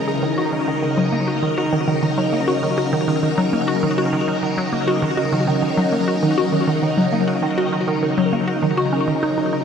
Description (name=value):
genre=ambient, sequencer-driven space music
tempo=100 BPM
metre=4/4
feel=straight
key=unclear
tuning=A4 = 439 Hz
part: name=phased string machine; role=sustained chords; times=0.0-9.6 s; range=C#3 to A#4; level=-20 LUFS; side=left 1 dB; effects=ensemble chorus, phaser, shimmer reverb
part: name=hollow square pluck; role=riff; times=0.0-9.6 s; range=D#3 to G#4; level=-21 LUFS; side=equal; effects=chorus, phaser, ping-pong delay
part: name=pulsing gated texture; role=texture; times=0.0-9.6 s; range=D#4 to D#5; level=-26 LUFS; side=right 2 dB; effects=chorus, built-in reverb, shimmer reverb
room=wet huge ambient reverb, RT60 8.6 s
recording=none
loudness=-17 LUFS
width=side -7 dB against mid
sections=0.0-9.6 A section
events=filter sweep on synth arpeggio sound 0.0-9.6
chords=0.2 D#m7